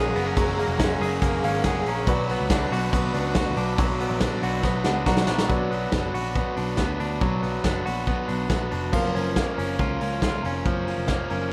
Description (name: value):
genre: jangly indie pop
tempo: 140 BPM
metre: 4/4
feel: straight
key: unclear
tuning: A4 = 440 Hz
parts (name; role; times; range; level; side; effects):
- bright upright piano; accompaniment; 0.0-11.5 s; F#3 to A#5; -36 LUFS; equal; none
- overdriven semi-hollow guitar; accompaniment; 0.0-11.5 s; B2 to B4; -33 LUFS; equal; none
- string machine, violins; sustained chords; 0.0-5.5 s; G#4 to D6; -34 LUFS; equal; ensemble chorus
- direct-recorded clean electric guitar; arpeggios; 0.0-11.5 s; E#3 to G#4; -31 LUFS; equal; none
- vintage muted picked electric bass; bass; 0.0-11.5 s; E#1 to D2; -31 LUFS; equal; none
- soft brush drum kit; drums; 0.2-11.4 s; crash cymbal, hi-hat, kick drum, ride cymbal, snare drum; -29 LUFS; equal; none
room: moderate large studio reverb, RT60 0.8 s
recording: vinyl crackle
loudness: -24 LUFS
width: mono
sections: 0.0-5.5 A section; 5.5-8.9 B section; 8.9-11.5 C section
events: upright piano fill 1.2-2.1, 4.6-5.5; drum fill 4.6-5.5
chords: 0.0 F#add9; 2.1 Bm; 8.9 F#maj7